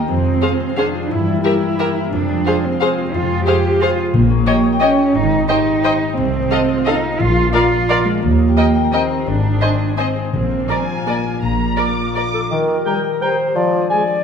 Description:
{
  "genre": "classical, orchestral ballroom waltz",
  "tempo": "156-194 BPM",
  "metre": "3/4",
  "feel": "rubato",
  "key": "Eb major",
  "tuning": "A4 = 444 Hz",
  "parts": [
    { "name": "concert harp", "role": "arpeggios", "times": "0.0-14.2 s", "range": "F2 to Bb5", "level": "-21 LUFS", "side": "left 8 dB", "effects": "none" },
    { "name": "muted chamber cello section", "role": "bass", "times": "0.1-12.3 s", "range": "Ab3 to G4", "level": "-18 LUFS", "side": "right 3 dB", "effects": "none" },
    { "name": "muted chamber double bass section", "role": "bass", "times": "0.1-11.7 s", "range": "Ab1 to G2", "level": "-22 LUFS", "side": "right 4 dB", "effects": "none" },
    { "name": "muted chamber violin section", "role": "melody", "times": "0.4-12.5 s", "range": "E5 to D6", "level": "-27 LUFS", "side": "left 2 dB", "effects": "none" },
    { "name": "muted chamber violin section", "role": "second line", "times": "0.4-12.2 s", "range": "Bb4 to Eb5", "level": "-23 LUFS", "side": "left 1 dB", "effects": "none" },
    { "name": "muted chamber viola section", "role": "accompaniment", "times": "0.4-12.2 s", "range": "G4 to Db5", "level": "-24 LUFS", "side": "equal", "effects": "none" },
    { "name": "timpani", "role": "percussion", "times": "4.1-4.6, 7.2-7.7, 10.3-10.8 s", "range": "Bb2", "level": "-22 LUFS", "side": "left 3 dB", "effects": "none" },
    { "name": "warm clarinet", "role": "second line", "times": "12.3-14.2 s", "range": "A4 to D5", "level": "-20 LUFS", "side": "left 3 dB", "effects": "none" },
    { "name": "mellow bassoon", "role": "accompaniment", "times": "12.5-13.8 s", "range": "Eb3 to F3", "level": "-20 LUFS", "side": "right 2 dB", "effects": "none" },
    { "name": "mellow cor anglais", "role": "second line", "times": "12.9-14.0 s", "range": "G5 to Ab5", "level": "-23 LUFS", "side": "right 2 dB", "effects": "none" },
    { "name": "silver concert flute", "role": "second line", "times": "12.9-14.0 s", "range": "Ab5 to Bb5", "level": "-26 LUFS", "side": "left 1 dB", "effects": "none" },
    { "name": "mellow French horn section", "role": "sustained chords", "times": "12.9-14.0 s", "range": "G3 to Bb4", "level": "-25 LUFS", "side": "left 4 dB", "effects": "none" }
  ],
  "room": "moderate scoring stage reverb, RT60 1.6 s",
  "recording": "minimal, uncompressed stereo recording",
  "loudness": "-14 LUFS",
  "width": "side -6 dB against mid",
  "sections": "0.0-12.5 A section; 12.5-14.2 A section",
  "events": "none",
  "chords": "0.1 Fm; 1.1 Edim/G; 2.1 Fm; 4.1 Eb7/Bb; 5.1 Abmaj7; 6.2 F7/C; 7.2 Bb; 8.2 Eb; 9.3 Ab; 10.3 Bb; 12.5 Eb; 13.6 Ddim/F",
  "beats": "| 0.08 0.42 0.77 | 1.10 1.44 1.79 | 2.12 2.46 2.81 | 3.14 3.47 3.81 | 4.13 4.46 4.81 | 5.14 5.48 5.83 | 6.17 6.51 6.87 | 7.20 7.54 7.89 | 8.23 8.57 8.93 | 9.27 9.61 9.97 | 10.33 10.69 11.07 | 11.43 11.78 12.16 | 12.51 12.86 13.22 | 13.56 13.90"
}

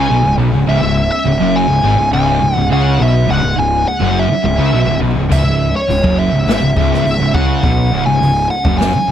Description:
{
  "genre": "stoner and doom metal",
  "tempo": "104 BPM",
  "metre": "4/4",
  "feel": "straight",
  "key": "C# minor",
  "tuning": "A4 = 437 Hz",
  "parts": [
    { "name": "fuzz lead guitar", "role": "melody", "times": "0.0-9.1 s", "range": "C#5 to G#5", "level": "-17 LUFS", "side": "equal", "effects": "wah, distortion, tape echo" },
    { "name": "string machine, violins", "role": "sustained chords", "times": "0.0-9.1 s", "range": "C#3 to C#4", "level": "-27 LUFS", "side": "left 1 dB", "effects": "none" },
    { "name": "crunchy overdriven guitar", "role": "riff", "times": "0.0-9.1 s", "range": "C#2 to C#3", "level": "-21 LUFS", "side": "equal", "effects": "none" },
    { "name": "thick fuzz guitar", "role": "riff", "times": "0.0-9.0 s", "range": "C#2 to C#3", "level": "-18 LUFS", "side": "left 6 dB", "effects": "distortion" },
    { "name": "thick fuzz guitar", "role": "riff", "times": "0.0-9.1 s", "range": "C#2 to C#3", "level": "-19 LUFS", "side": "right 7 dB", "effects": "distortion" },
    { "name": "fuzz picked electric bass", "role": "bass", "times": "0.0-9.1 s", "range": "C#1 to C#2", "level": "-18 LUFS", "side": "equal", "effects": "overdrive" },
    { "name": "jazz brush drum kit", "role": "drums", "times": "5.3-8.9 s", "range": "crash cymbal, hi-hat, kick drum, snare drum", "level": "-18 LUFS", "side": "equal", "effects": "none" }
  ],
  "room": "light reverb",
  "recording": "dark, warm production",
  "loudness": "-11 LUFS",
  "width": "side -10 dB against mid",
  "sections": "0.0-9.1 A section",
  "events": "none",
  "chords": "0.0 C#m",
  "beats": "0.11 | 0.69 1.26 1.84 2.42 | 3.00 3.58 4.16 4.74 | 5.32 5.90 6.47 7.05 | 7.63 8.21 8.79"
}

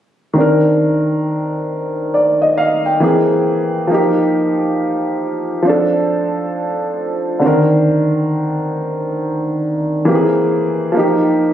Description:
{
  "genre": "R&B",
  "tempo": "68 BPM",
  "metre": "4/4",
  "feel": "swing 63% on 16ths",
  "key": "C dorian",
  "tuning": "A4 = 441 Hz",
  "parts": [
    { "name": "warm upright piano", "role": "solo", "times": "0.3-11.5 s", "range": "D3 to G5", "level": "-13 LUFS", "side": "equal", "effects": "slapback echo" }
  ],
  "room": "light reverb",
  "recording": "recorded on a phone in the room, studio reverb, compression",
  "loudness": "-13 LUFS",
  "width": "side -10 dB against mid",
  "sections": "0.4-11.5 A section",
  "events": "none",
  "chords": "0.4 Cm9; 3.0 Caug7; 3.9 F9sus4; 5.7 Dm7; 7.4 Cm9; 10.1 Caug7; 10.9 F9sus4",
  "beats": "| 0.36 1.24 2.13 3.01 | 3.89 4.77 5.66 6.54 | 7.42 8.30 9.18 10.07 | 10.95"
}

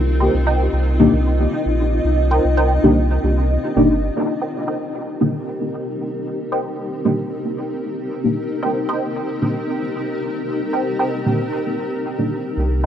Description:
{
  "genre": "dub techno",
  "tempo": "114 BPM",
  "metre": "4/4",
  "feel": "straight",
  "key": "C minor",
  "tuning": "A4 = 436 Hz",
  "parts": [
    { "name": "granular cloud pad", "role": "sustained chords", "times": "0.0-12.9 s", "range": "C4 to Eb5", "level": "-23 LUFS", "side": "left 1 dB", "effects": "built-in reverb" },
    { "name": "pure sine sub bass", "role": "bass", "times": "0.0-4.1, 12.6-12.9 s", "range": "G1 to C2", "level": "-18 LUFS", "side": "equal", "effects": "tube saturation" },
    { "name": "filtered dub chord stab", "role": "riff", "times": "0.2-12.9 s", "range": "Bb4 to G5", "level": "-26 LUFS", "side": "right 2 dB", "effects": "phaser, analog chorus, dub echo" },
    { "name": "deep mellow chord stab", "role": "stabs", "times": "1.0-12.3 s", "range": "Bb3 to G4", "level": "-19 LUFS", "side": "equal", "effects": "chorus, phaser, dub echo" }
  ],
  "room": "light reverb",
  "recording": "dry, gritty hardware recording",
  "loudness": "-17 LUFS",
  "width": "side -9 dB against mid",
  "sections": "0.0-4.2 A section; 4.2-12.6 B section",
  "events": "filter sweep on synth stab 4.2-12.6",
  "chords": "0.0 Cm7",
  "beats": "0.47 0.99 1.52 | 2.05 2.57 3.10 3.62 | 4.15 4.68 5.20 5.73 | 6.26 6.78 7.31 7.84 | 8.36 8.89 9.41 9.94 | 10.47 10.99 11.52 12.05 | 12.57"
}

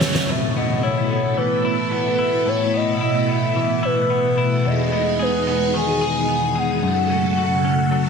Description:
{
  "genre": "dream pop",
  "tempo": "110 BPM",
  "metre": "4/4",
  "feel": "straight",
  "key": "A lydian",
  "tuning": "A4 = 441 Hz",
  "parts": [
    { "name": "hollow clarinet-like synth lead", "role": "melody", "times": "0.0-8.1 s", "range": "B4 to G#5", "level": "-22 LUFS", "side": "equal", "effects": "chorus, ping-pong delay" },
    { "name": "phased string machine", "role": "sustained chords", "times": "0.0-8.1 s", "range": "B2 to A4", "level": "-21 LUFS", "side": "right 1 dB", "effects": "ensemble chorus, phaser" },
    { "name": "semi-hollow electric guitar", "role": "arpeggios", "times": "0.0-8.1 s", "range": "E2 to G#4", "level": "-24 LUFS", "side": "left 4 dB", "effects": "wide subtle chorus" }
  ],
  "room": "moderate lush hall reverb, RT60 2.1 s",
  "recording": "dense, heavily limited modern master",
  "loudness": "-17 LUFS",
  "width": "side -6 dB against mid",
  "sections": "0.3-8.1 A section",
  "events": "none",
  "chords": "0.3 Asus2; 4.6 Emaj7; 6.8 F#m",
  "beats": "| 0.28 0.82 1.37 1.91 | 2.46 3.00 3.55 4.10 | 4.64 5.19 5.73 6.28 | 6.82 7.37 7.91"
}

